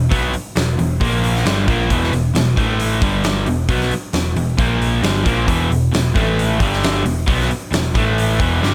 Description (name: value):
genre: hard rock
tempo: 134 BPM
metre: 4/4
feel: straight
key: E minor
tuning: A4 = 440 Hz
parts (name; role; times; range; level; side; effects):
- cranked stack guitar; riff; 0.0-8.7 s; E2 to B3; -24 LUFS; equal; overdrive
- overdriven semi-hollow guitar; riff; 0.0-8.7 s; E2 to B3; -23 LUFS; equal; none
- overdriven picked electric bass; bass; 0.0-8.7 s; E1 to B1; -23 LUFS; equal; none
- huge arena drum kit; drums; 0.1-8.7 s; hi-hat, kick drum, snare drum; -23 LUFS; equal; none
room: light reverb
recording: none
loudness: -17 LUFS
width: mono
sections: 0.0-8.7 A section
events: none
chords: 0.0 E5; 1.0 A#5; 1.5 Em; 2.6 A5; 3.0 G5; 3.5 E5; 4.6 A#5; 5.0 Em; 6.2 A5; 6.6 G5; 7.0 E5; 7.9 A5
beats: | 0.12 0.56 1.01 1.46 | 1.91 2.35 2.80 3.25 | 3.69 4.14 4.59 5.04 | 5.48 5.93 6.38 6.83 | 7.27 7.72 8.17 8.62